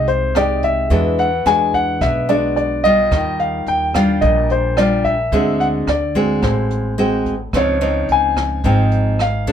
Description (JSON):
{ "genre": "bossa nova", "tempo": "109 BPM", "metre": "4/4", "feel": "straight", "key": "unclear", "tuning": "A4 = 441 Hz", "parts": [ { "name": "dark baby grand piano", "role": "melody", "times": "0.0-9.5 s", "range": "C5 to G#5", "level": "-18 LUFS", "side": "left 2 dB", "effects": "none" }, { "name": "nylon-string guitar", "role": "accompaniment", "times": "0.0-9.5 s", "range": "Ab2 to G4", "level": "-19 LUFS", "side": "equal", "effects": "none" }, { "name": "upright bass", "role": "bass", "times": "0.0-9.5 s", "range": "Ab1 to E2", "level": "-22 LUFS", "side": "right 1 dB", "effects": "none" }, { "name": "jazz brush drum kit", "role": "drums", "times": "0.1-9.5 s", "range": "hi-hat, kick drum, rim click", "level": "-25 LUFS", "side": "right 1 dB", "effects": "none" } ], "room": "moderate studio reverb, RT60 0.5 s", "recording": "none", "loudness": "-14 LUFS", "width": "side -9 dB against mid", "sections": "0.0-9.5 A section", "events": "none", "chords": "0.0 Fm9 (rootless); 0.9 E9; 3.1 Ebmaj9; 5.3 D7#11; 7.5 Dbmaj9" }